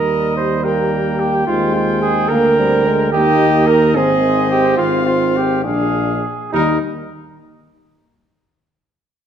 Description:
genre	classical, brass quintet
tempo	71 BPM (dotted quarters)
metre	6/8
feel	uneven beats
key	Eb major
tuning	A4 = 440 Hz
part	bright trumpet	melody	0.0-6.8 s	Bb4 to G5	-25 LUFS	left 7 dB	none
part	warm flugelhorn	second line	0.0-6.8 s	Eb4 to C5	-17 LUFS	right 4 dB	none
part	clear euphonium	accompaniment	0.0-6.8 s	G3 to Eb4	-22 LUFS	right 1 dB	none
part	warm French horn	accompaniment	0.0-6.8 s	G3 to Eb4	-20 LUFS	left 4 dB	none
part	warm tuba	bass	0.0-6.8 s	Ab1 to Eb2	-21 LUFS	right 2 dB	none
room	moderate recital hall reverb, RT60 1.6 s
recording	dark, warm production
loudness	-13 LUFS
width	side -8 dB against mid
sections	0.0-6.5 A section; 6.5-8.3 B section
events	slowing down 2.3-6.5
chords	0.0 Eb; 1.5 Bb7/Eb; 3.1 Eb; 4.0 Ab; 5.6 Bb7; 6.5 Eb

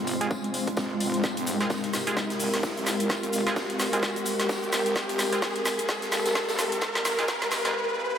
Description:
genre	bass house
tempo	129 BPM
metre	4/4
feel	swing 58% on 16ths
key	F minor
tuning	A4 = 437 Hz
part	dark analog pad	sustained chords	0.0-8.2 s	Ab3 to C5	-30 LUFS	equal	chorus, sidechain pumping
part	wobble bass	bass	0.0-7.7 s	Eb1 to F2	-38 LUFS	equal	none
part	riser	sound effects	0.0-8.2 s	none	-33 LUFS	equal	none
part	granular cloud pad	texture	0.0-7.8 s	Ab3 to C6	-34 LUFS	equal	built-in reverb, sidechain pumping
part	big rock drum kit	drums	0.1-7.7 s	hi-hat, snare drum, tambourine	-38 LUFS	equal	sidechain pumping on hats, high-pass filter on hats, studio reverb, high-pass filter on snare, sidechain pumping on perc, high-pass filter on perc, high-pass filter on room
part	garage drum kit	drums	0.1-7.7 s	hi-hat, shaker, snare drum	-30 LUFS	equal	high-pass filter on hats, studio reverb, high-pass filter on snare, high-pass filter on perc
part	band-passed chord stab	stabs	0.2-7.7 s	Ab3 to Ab4	-34 LUFS	right 2 dB	chorus, sidechain pumping, dub echo
part	electronic kick drum	drums	0.3-7.4 s	none	-29 LUFS	equal	high-pass filter on kick, studio reverb
room	moderate lush hall reverb, RT60 2.0 s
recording	high-pass filter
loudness	-24 LUFS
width	side -8 dB against mid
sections	0.0-8.2 A section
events	build-up 0.0-8.2; riser 0.0-8.2; drum fill 1.2-7.7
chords	0.0 Fm

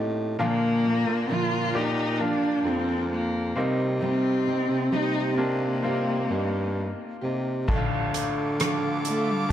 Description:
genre	pop ballad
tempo	66 BPM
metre	4/4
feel	straight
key	unclear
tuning	A4 = 438 Hz
part	bright baby grand piano	accompaniment	0.0-9.5 s	A2 to D5	-31 LUFS	left 2 dB	none
part	picked steel-string acoustic guitar	arpeggios	0.0-9.5 s	Bb2 to Bb4	-33 LUFS	right 3 dB	none
part	growling baritone saxophone	bass	0.0-9.5 s	F2 to D3	-28 LUFS	equal	none
part	warm cello	melody	0.4-9.5 s	G3 to F4	-27 LUFS	equal	none
part	airy breathy pad	sustained chords	8.0-9.5 s	A4 to D6	-31 LUFS	right 1 dB	chorus
part	soft-mallet drum kit	drums	7.7-9.5 s	crash cymbal, hi-hat, kick drum, rim click	-27 LUFS	equal	none
room	light reverb, small room ambience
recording	dark, warm production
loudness	-23 LUFS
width	side -11 dB against mid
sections	0.0-7.7 A section; 7.7-9.5 B section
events	none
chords	0.4 Bb; 3.6 Cm7; 7.7 Dm

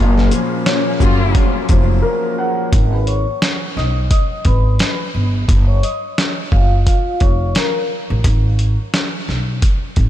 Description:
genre	hip hop, boom-bap hip-hop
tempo	87 BPM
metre	4/4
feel	swing 57% on 16ths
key	G# dorian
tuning	A4 = 444 Hz
part	dark concert grand piano	accompaniment	0.0-2.7 s	A#2 to F#5	-19 LUFS	left 3 dB	high-pass filter, low-pass filter
part	hollow soft pad	sustained chords	0.0-2.7 s	A#3 to G#4	-27 LUFS	left 1 dB	ensemble chorus, high-pass filter, low-pass filter
part	warm studio string section	stabs	0.0-1.5 s	C#3 to E#4	-26 LUFS	left 2 dB	high-pass filter, low-pass filter, ping-pong delay
part	upright bass	bass	0.0-10.1 s	E#1 to B1	-16 LUFS	equal	none
part	boom bap sampler-style drum kit	drums	0.2-10.1 s	hi-hat, kick drum, shaker, snare drum	-16 LUFS	equal	vintage 12-bit sampler grit
part	vibraphone with soft mallets	melody	2.9-7.9 s	E#4 to D#6	-23 LUFS	left 2 dB	high-pass filter, low-pass filter, ping-pong delay
room	light reverb, small room ambience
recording	none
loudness	-14 LUFS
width	side -12 dB against mid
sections	0.0-2.7 A section; 2.7-10.1 B section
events	break 2.0-2.7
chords	0.0 F#maj7; 2.7 G#madd11; 5.5 F#maj7; 8.2 G#m

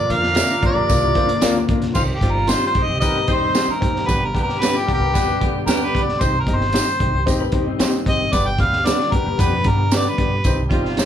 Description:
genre	uptempo 1960s-style soul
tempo	113 BPM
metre	4/4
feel	straight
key	C harmonic minor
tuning	A4 = 440 Hz
part	mellow harmonica	melody	0.0-10.6 s	F4 to G5	-21 LUFS	equal	none
part	mellow horn section	second line	0.0-6.0, 10.7-11.1 s	C3 to C5	-27 LUFS	equal	none
part	clear baby grand piano	accompaniment	0.0-11.1 s	G2 to E5	-26 LUFS	left 1 dB	none
part	tonewheel organ	sustained chords	0.0-11.1 s	D3 to G4	-31 LUFS	right 1 dB	slow rotary speaker, overdrive, chorus vibrato
part	upright bass	bass	0.0-11.0 s	G1 to G2	-25 LUFS	equal	none
part	crunchy breakbeat drum kit	drums	0.1-11.1 s	crash cymbal, hi-hat, kick drum, snare drum	-21 LUFS	equal	none
part	electric guitar through a small old amp	stabs	0.4-11.1 s	D4 to D5	-27 LUFS	right 4 dB	none
part	tambourine	percussion	0.4-11.1 s	none	-30 LUFS	right 8 dB	none
part	electric guitar through a small old amp	riff	0.8-10.3 s	Bb3 to B4	-27 LUFS	left 8 dB	none
room	moderate large studio reverb, RT60 0.9 s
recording	band playing live in one room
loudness	-16 LUFS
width	side -9 dB against mid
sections	0.0-2.0 A section; 2.0-11.1 B section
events	harmonica solo 2.0-11.1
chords	0.0 Bb; 2.0 Cm; 4.1 G; 6.2 Cm; 8.3 G; 10.5 Cm

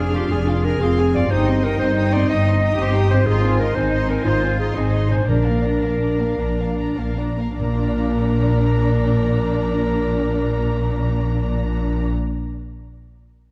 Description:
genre	cinematic, heroic adventure film score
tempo	95-123 BPM (dotted quarters)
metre	12/8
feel	straight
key	Bb mixolydian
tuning	A4 = 440 Hz
part	rich symphonic violin section	melody	0.0-12.1 s	F5 to F6	-37 LUFS	equal	none
part	bright clarinet	second line	0.0-12.1 s	G4 to Eb5	-26 LUFS	equal	none
part	warm symphonic violin section	second line	0.0-12.1 s	Bb4 to Ab5	-36 LUFS	equal	none
part	warm symphonic viola section	accompaniment	0.0-12.1 s	Bb3 to Ab4	-29 LUFS	equal	none
part	concert harp	arpeggios	0.0-12.4 s	F2 to F5	-32 LUFS	equal	none
part	rich symphonic cello section	bass	0.0-12.1 s	Bb2 to G4	-27 LUFS	equal	none
part	rich symphonic double bass section	bass	0.0-12.1 s	F1 to Bb1	-24 LUFS	equal	none
part	timpani	percussion	5.3-12.1 s	Bb2	-33 LUFS	equal	none
room	moderate scoring stage reverb, RT60 2.0 s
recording	dark, warm production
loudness	-19 LUFS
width	mono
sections	0.0-7.6 A section; 7.6-12.6 B section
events	slowing down 3.9-7.6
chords	0.0 Fm; 1.3 Cm/G; 3.3 Ab; 5.3 Bb

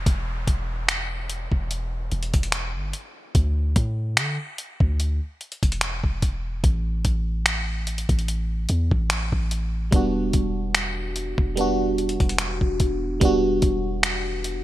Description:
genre	contemporary R&B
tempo	73 BPM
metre	4/4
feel	swing 54% on 16ths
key	E minor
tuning	A4 = 440 Hz
part	warm 808-style bass	bass	0.0-14.6 s	E1 to D3	-26 LUFS	equal	none
part	downlifter	sound effects	0.0-3.4 s	none	-40 LUFS	equal	none
part	dusty soul sampler-style drum kit	drums	0.1-14.6 s	finger snaps, hi-hat, kick drum	-22 LUFS	equal	gated reverb
part	FM electric piano	accompaniment	9.9-14.6 s	G3 to F#4	-23 LUFS	right 1 dB	chorus, phaser
room	little or no reverb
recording	bright 1980s-style digital production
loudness	-21 LUFS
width	side -14 dB against mid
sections	0.0-14.6 A section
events	none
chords	0.0 N.C.; 3.3 D5; 5.8 N.C.; 6.6 A5; 9.9 Em7

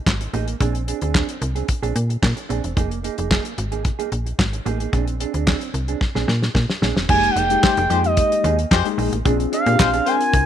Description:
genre	early-eighties boogie funk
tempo	111 BPM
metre	4/4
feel	straight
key	F dorian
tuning	A4 = 440 Hz
part	mellow electric guitar	riff	0.1-10.4 s	Bb3 to Ab4	-27 LUFS	right 12 dB	lush chorus
part	slap-like FM bass	bass	0.1-10.5 s	E1 to Bb2	-22 LUFS	equal	none
part	damped 70s drum kit	drums	0.1-10.5 s	crash cymbal, handclaps, hi-hat, kick drum, snare drum	-21 LUFS	equal	none
part	expressive portamento lead	melody	7.1-10.5 s	Eb5 to Ab5	-18 LUFS	right 2 dB	chorus
part	mellow tine electric piano	accompaniment	7.1-10.5 s	Ab3 to Bb4	-24 LUFS	left 16 dB	medium stereo tremolo
part	warm horn section	second line	7.6-10.2 s	Ab3 to C5	-25 LUFS	left 12 dB	none
room	studio reverb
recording	1960s-style stereo with parts hard left and right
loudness	-18 LUFS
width	side -10 dB against mid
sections	0.0-7.1 A section; 7.1-10.5 B section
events	drum fill 6.0-7.1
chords	0.0 Fm7 (rootless); 0.6 Bb9; 2.8 Fm7; 4.9 Bb9; 7.1 Fm11; 9.3 Bb9

